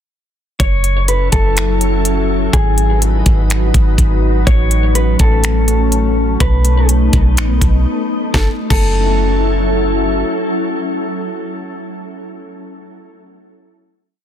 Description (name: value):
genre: hip hop, atmospheric cloud-rap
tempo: 124 BPM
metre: 4/4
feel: half-time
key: F# dorian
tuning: A4 = 440 Hz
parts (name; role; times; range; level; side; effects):
- mellow electric guitar; melody; 0.6-9.8 s; G#4 to C#5; -22 LUFS; left 2 dB; digital delay
- glassy FM pad; sustained chords; 1.1-12.0 s; F#3 to B4; -19 LUFS; left 1 dB; ensemble chorus, built-in reverb
- soft 808-style bass; bass; 0.6-10.2 s; F#1 to B1; -14 LUFS; equal; none
- trap drum kit; drums; 0.6-8.8 s; crash cymbal, finger snaps, hi-hat, kick drum, snare drum; -15 LUFS; equal; soft clipping on snare
room: digital ambience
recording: dense, heavily limited modern master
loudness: -12 LUFS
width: side -10 dB against mid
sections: 0.6-8.3 verse; 8.3-12.2 final chord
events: break 7.9-8.3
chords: 0.6 F#m7; 2.5 G#m7; 4.5 A; 6.4 B7; 8.3 F#m7